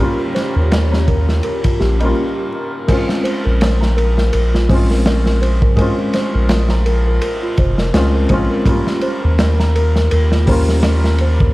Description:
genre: trip hop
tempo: 83 BPM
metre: 4/4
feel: swing 57% on 16ths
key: Bb dorian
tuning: A4 = 440 Hz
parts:
  - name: felt-muted upright piano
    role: accompaniment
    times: 0.0-11.5 s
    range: G3 to F4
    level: -20 LUFS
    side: equal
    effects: harmonic tremolo, vintage 12-bit sampler grit, tape echo
  - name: string machine, cellos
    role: sustained chords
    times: 0.0-2.1 s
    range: Db4 to G4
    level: -27 LUFS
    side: equal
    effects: phaser, ensemble chorus
  - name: small celesta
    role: arpeggios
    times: 0.0-11.5 s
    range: F4 to Bb5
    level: -22 LUFS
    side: equal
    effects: tape echo
  - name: backwards swelling texture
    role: texture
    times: 0.1-2.2 s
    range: none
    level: barely audible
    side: none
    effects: none
  - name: crunchy breakbeat drum kit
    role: drums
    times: 0.4-11.5 s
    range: crash cymbal, hi-hat, kick drum, ride cymbal, snare drum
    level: -18 LUFS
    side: equal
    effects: none
  - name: soft dub sub bass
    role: bass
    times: 0.6-11.5 s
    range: F1 to Eb2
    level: -15 LUFS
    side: equal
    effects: none
room: small room ambience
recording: played on a big sound system in a bare room, stone room reverb, vinyl crackle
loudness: -13 LUFS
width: side -19 dB against mid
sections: 0.0-2.9 A section; 2.9-11.5 B section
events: stop 2.2-2.9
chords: 0.0 Eb7; 2.9 Bbm7; 8.7 Eb7

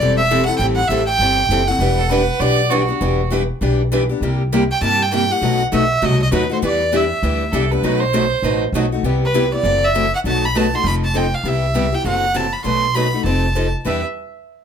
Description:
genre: acoustic string swing (jazz manouche)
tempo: 199 BPM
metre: 4/4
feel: swing 60% on 8ths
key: E minor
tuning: A4 = 440 Hz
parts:
  - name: bright violin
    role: melody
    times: 0.0-14.0 s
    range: B4 to C6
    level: -19 LUFS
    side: right 2 dB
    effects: none
  - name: picked steel-string acoustic guitar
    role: accompaniment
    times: 0.0-14.0 s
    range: B2 to A4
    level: -22 LUFS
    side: left 7 dB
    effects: none
  - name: picked steel-string acoustic guitar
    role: accompaniment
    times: 0.0-14.0 s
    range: B2 to B4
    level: -23 LUFS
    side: right 4 dB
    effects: none
  - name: upright bass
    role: bass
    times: 0.0-14.0 s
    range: E1 to G2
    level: -21 LUFS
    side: equal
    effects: none
  - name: clear fiddle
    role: second line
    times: 2.0-3.3, 7.5-8.6, 13.8-14.0 s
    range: F#4 to D5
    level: -21 LUFS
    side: right 5 dB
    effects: none
room: moderate club reverb, RT60 0.7 s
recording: none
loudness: -15 LUFS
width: side -7 dB against mid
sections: 0.0-9.0 A section; 9.0-13.9 B section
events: none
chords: 0.0 Am7; 1.8 Em9; 4.2 C7; 5.4 B7b9; 6.6 Em7; 7.8 B7b9; 9.0 Cmaj7; 9.6 F#m7b5; 10.2 B7; 10.8 F7; 11.4 Cmaj7; 12.0 F#m7b5; 12.7 B7b9; 13.3 F7; 13.9 Em7

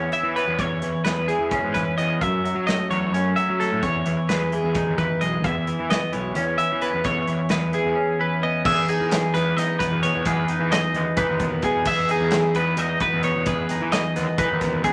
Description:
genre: math rock and midwest emo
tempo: 262 BPM (eighths)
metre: 7/8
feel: straight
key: E major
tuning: A4 = 440 Hz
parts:
  - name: twelve-string electric guitar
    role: accompaniment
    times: 0.0-14.9 s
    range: E2 to G#4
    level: -27 LUFS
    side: equal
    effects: spring reverb
  - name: twelve-string electric guitar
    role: arpeggios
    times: 0.0-14.9 s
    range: G#4 to E5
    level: -26 LUFS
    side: equal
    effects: none
  - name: fuzz picked electric bass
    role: bass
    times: 0.0-14.9 s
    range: B1 to F#3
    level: -31 LUFS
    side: equal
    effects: overdrive
  - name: modern studio drum kit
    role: drums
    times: 0.1-14.9 s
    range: crash cymbal, hi-hat, kick drum, snare drum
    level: -32 LUFS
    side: equal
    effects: none
room: wet studio reverb, RT60 0.6 s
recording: none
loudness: -22 LUFS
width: mono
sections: 0.0-8.7 A section; 8.7-14.9 B section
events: none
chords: 0.0 C#m7; 0.6 E6; 2.2 F#m7; 3.8 Emaj7; 7.1 E6; 8.7 Emaj7

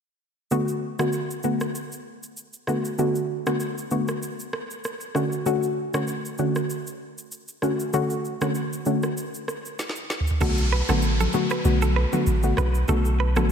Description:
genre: afrobeats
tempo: 97 BPM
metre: 4/4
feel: swing 55% on 16ths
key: unclear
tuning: A4 = 440 Hz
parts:
  - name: soft round pluck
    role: accompaniment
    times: 0.5-13.5 s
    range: D3 to F#4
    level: -24 LUFS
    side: left 1 dB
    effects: chorus
  - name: afro-pop drum kit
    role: drums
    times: 0.5-13.5 s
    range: crash cymbal, rim click, shaker, snare drum, toms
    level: -32 LUFS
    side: right 1 dB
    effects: overdrive
  - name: direct-recorded clean electric guitar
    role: riff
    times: 10.4-13.5 s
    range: A4 to B4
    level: -29 LUFS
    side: right 6 dB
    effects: spring reverb, analog delay
  - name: punchy sub bass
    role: bass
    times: 10.4-13.5 s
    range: A1 to B1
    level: -22 LUFS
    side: equal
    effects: none
  - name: congas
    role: percussion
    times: 10.4-13.5 s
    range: none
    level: -32 LUFS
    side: left 4 dB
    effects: none
  - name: downlifter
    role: sound effects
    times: 10.4-13.5 s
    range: none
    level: -34 LUFS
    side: equal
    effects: none
room: moderate lush hall reverb, RT60 1.9 s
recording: dreamy mix soaked in reverb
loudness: -22 LUFS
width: side -7 dB against mid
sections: 0.5-10.4 A section; 10.4-13.5 B section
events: drum fill 9.8-10.4; kick muted 10.4-13.5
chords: 0.5 Bm7; 5.2 Dmaj7; 10.4 Bm7

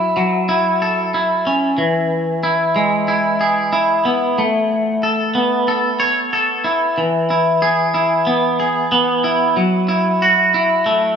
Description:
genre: rock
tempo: 92 BPM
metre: 4/4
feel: straight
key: E major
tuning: A4 = 440 Hz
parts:
  - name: twangy electric guitar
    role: solo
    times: 0.0-11.2 s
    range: E3 to C#5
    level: -14 LUFS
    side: equal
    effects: vibrato effect, analog delay
room: moderate plate reverb, RT60 3.6 s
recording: small room ambience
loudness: -14 LUFS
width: side -7 dB against mid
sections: 0.0-7.0 A section; 7.0-11.2 B section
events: build-up 7.0-11.2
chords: 0.0 F#m7; 1.8 E; 4.4 Aadd9; 7.0 E; 9.6 F#m7

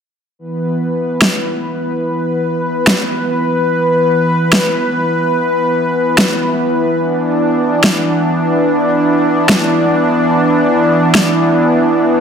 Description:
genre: heavy wobble dubstep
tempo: free time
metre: none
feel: none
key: unclear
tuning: A4 = 440 Hz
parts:
  - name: supersaw pad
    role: sustained chords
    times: 0.4-12.2 s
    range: E3 to B4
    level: -12 LUFS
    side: equal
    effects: none
  - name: electronic snare drum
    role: drums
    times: 1.2-11.2 s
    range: none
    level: -15 LUFS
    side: equal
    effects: overdrive, studio reverb
room: moderate lush hall reverb, RT60 2.2 s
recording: dense, heavily limited modern master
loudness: -11 LUFS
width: side -7 dB against mid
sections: 0.4-12.2 A section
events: none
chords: 0.4 E5

